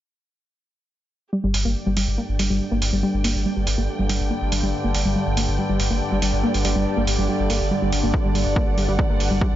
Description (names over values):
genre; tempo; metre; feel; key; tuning
driving peak-time techno; 141 BPM; 4/4; straight; unclear; A4 = 440 Hz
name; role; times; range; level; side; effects
warbly dusty pluck; riff; 1.3-9.5 s; G3 to Bb3; -25 LUFS; equal; chorus, sidechain pumping, tape echo
analog drone; drone; 1.8-9.6 s; G2 to D3; -27 LUFS; left 1 dB; chorus, phaser, sidechain pumping
dark studio string section; texture; 1.3-9.6 s; G4 to G5; -31 LUFS; right 1 dB; sidechain pumping
saturated sub bass; bass; 1.4-9.6 s; G1; -24 LUFS; equal; tube saturation, sidechain pumping, low-pass filter
electronic hi-hat; drums; 1.5-9.3 s; none; -28 LUFS; right 3 dB; sidechain pumping on hats
electronic kick drum; drums; 8.1-9.5 s; none; -21 LUFS; equal; none
room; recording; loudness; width
light reverb, digital ambience; nothing above 7.6 kHz; -19 LUFS; side -12 dB against mid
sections
1.3-9.6 A section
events
fade-in on string section 1.3-9.6; filter sweep on synth arpeggio sound 1.3-9.6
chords
1.3 G5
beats
| 1.33 1.75 2.18 2.60 | 3.03 3.46 3.88 4.31 | 4.73 5.16 5.58 6.01 | 6.43 6.86 7.29 7.71 | 8.14 8.56 8.99 9.41